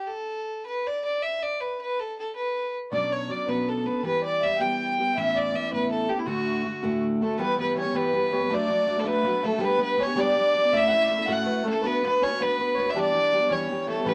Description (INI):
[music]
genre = celtic folk, Celtic jig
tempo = 108 BPM (dotted quarters)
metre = 6/8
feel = straight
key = unclear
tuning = A4 = 440 Hz
[part]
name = clear fiddle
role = melody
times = 0.0-14.1 s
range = E4 to G5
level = -27 LUFS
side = equal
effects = none
[part]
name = dark fiddle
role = second line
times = 2.9-14.1 s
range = F#4 to G5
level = -34 LUFS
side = equal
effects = none
[part]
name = picked steel-string acoustic guitar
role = accompaniment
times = 2.9-14.1 s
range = D2 to B4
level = -31 LUFS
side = equal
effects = none
[part]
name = Irish bouzouki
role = second line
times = 7.2-14.1 s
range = A3 to F#4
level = -37 LUFS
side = equal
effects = none
[sound]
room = moderate studio ambience, RT60 0.5 s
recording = vinyl crackle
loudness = -25 LUFS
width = mono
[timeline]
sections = 0.0-7.4 A section; 7.4-14.1 B section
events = none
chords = 0.0 N.C.; 2.9 Bmadd9; 4.0 Em; 5.2 Aadd9; 6.3 D; 7.4 Em; 8.5 D/F#; 9.6 G; 10.7 A; 11.8 Bm; 13.0 Em